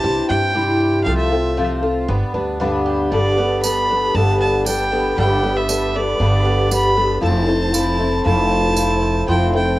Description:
acoustic folk duo or small band; 117 BPM; 4/4; straight; A4 = 440 Hz
warm fiddle; melody; 0.0-9.8 s; D5 to B5; -21 LUFS; right 1 dB; cassette tape, plate reverb
fingerpicked twelve-string acoustic guitar; accompaniment; 0.0-9.8 s; G2 to B4; -19 LUFS; left 2 dB; cassette tape, plate reverb
picked acoustic archtop guitar; arpeggios; 0.0-9.8 s; E3 to G4; -27 LUFS; right 4 dB; cassette tape
upright bass; bass; 0.0-9.8 s; F1 to G2; -21 LUFS; equal
mellow tonewheel organ; sustained chords; 3.1-9.8 s; G4 to B5; -27 LUFS; right 1 dB; slow rotary speaker, chorus vibrato, cassette tape
tambourine; percussion; 3.6-8.9 s; -25 LUFS; right 5 dB
light reverb; home recording on cassette; -15 LUFS; side -16 dB against mid
0.0-3.1 A section; 3.1-9.8 B section
fiddle solo 0.0-3.1
0.0 Cadd9; 1.1 F/C; 2.1 G; 3.1 Gadd9; 7.2 Fmaj7

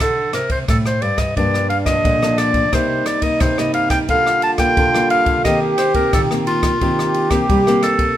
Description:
samba and choro; 88 BPM; 4/4; straight; G minor; A4 = 443 Hz
clear clarinet; melody; 0.0-8.2 s; F4 to A5; -18 LUFS; equal
nylon-string guitar; bass; 0.0-8.1 s; G2 to G3; -22 LUFS; equal
open jazz drum kit; drums; 0.0-8.2 s; kick drum, ride cymbal, rim click; -21 LUFS; equal
breathy trombone; second line; 1.4-8.1 s; D4 to G4; -21 LUFS; right 2 dB
nylon-string guitar; accompaniment; 1.4-8.1 s; G2 to G4; -23 LUFS; left 4 dB
moderate large studio reverb, RT60 1.1 s; minimal, uncompressed stereo recording; -14 LUFS; side -12 dB against mid
0.0-8.2 A section
0.0 D7sus4; 1.4 Gm7; 2.7 Cm7; 4.1 Gm7/D; 5.5 Eb6; 6.8 Cm7/Eb

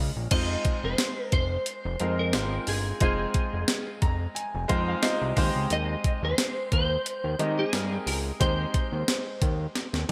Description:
1980s-style pop; 89 BPM; 4/4; swing 55% on 16ths; F minor; A4 = 439 Hz
clear concert grand piano; accompaniment; 0.0-10.1 s; Ab3 to Bb5; -34 LUFS; equal; analog chorus
fat analog bass; bass; 0.0-10.1 s; F1 to Eb3; -32 LUFS; equal
clean electric guitar; melody; 0.3-9.4 s; Ab4 to Eb5; -34 LUFS; equal; ensemble chorus, delay
clean 12-bit digital drum machine; drums; 0.3-10.1 s; crash cymbal, hi-hat, kick drum, snare drum, tambourine, toms; -29 LUFS; equal; gated reverb
moderate plate reverb, RT60 2.9 s; bright 1980s-style digital production; -27 LUFS; mono
0.3-10.1 A section
grand piano fill 3.7-5.7; drum fill 9.8-10.1
0.3 Fm7; 5.4 Abmaj7

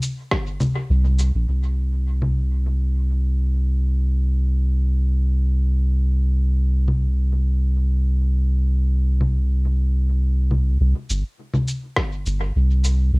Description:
ambient dub; 103 BPM; 4/4; straight; A4 = 436 Hz
electronic cabasa, rim click and congas; drums; 0.0-2.3, 6.9-13.0 s; -24 LUFS; left 1 dB; small room ambience, cassette tape, dub echo
electronic kick drum; drums; 0.3-0.4, 12.0-12.1 s; -26 LUFS; equal; overdrive, small room ambience, cassette tape
soft dub sub bass; bass; 0.9-13.2 s; G1 to C2; -18 LUFS; equal
little or no reverb; home recording on cassette; -18 LUFS; side -32 dB against mid
0.0-1.5 A section; 1.5-10.8 B section; 10.8-13.2 A section

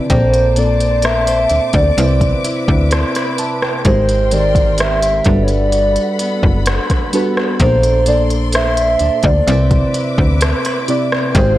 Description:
contemporary R&B; 64 BPM; 4/4; straight; A4 = 440 Hz
muted felt-like synth keys; accompaniment; 0.0-11.6 s; Bb2 to C6; -19 LUFS; right 1 dB; chorus
warm studio string section; sustained chords; 0.0-11.6 s; A4 to D6; -26 LUFS; left 3 dB
nylon-string guitar; arpeggios; 0.0-11.6 s; G3 to C5; -25 LUFS; left 1 dB
hollow clarinet-like synth lead; melody; 0.1-11.6 s; C5 to E5; -16 LUFS; equal; chorus, tremolo, tape echo
slap-like FM bass; bass; 0.1-11.6 s; F#1 to D2; -16 LUFS; equal
smooth R&B drum kit; drums; 0.1-11.6 s; hi-hat, kick drum, rim click; -18 LUFS; equal
soft round pluck; texture; 0.1-2.2, 9.5-11.6 s; E5 to G5; -32 LUFS; left 1 dB
swell; sound effects; 11.5-11.6 s; -32 LUFS; left 2 dB
little or no reverb; dry, gritty hardware recording, transformer saturation; -12 LUFS; side -15 dB against mid
0.1-11.6 A section
swell 11.5
0.1 Bbmaj9; 2.0 Cmaj9; 3.9 Abmaj9; 5.3 Gmaj9; 7.6 Bbmaj9; 9.5 Cmaj9

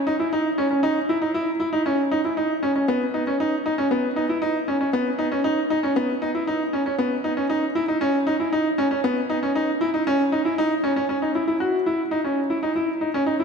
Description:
electronica; 117 BPM; 4/4; straight; A4 = 441 Hz
clear upright piano; solo; 0.1-13.4 s; B3 to F#4; -20 LUFS; equal
wet concert hall reverb, RT60 2.3 s; -20 LUFS; side -5 dB against mid
0.0-11.1 A section; 11.1-13.4 B section

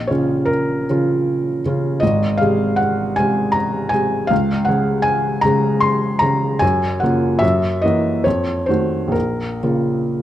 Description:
classical, romantic nocturne for solo piano; 62-82 BPM; 3/4; rubato; Bb minor; A4 = 439 Hz
felt-muted upright piano; solo; 0.0-10.2 s; Ab1 to C6; -16 LUFS; equal
moderate recital hall reverb, RT60 1.5 s; close, detailed microphones; -16 LUFS; side -12 dB against mid
0.0-10.2 A section
0.0 Bbm; 2.0 Ab; 4.3 Db5; 6.6 Gbmaj7; 7.4 Gb7; 8.3 F7b9; 9.1 Bbm

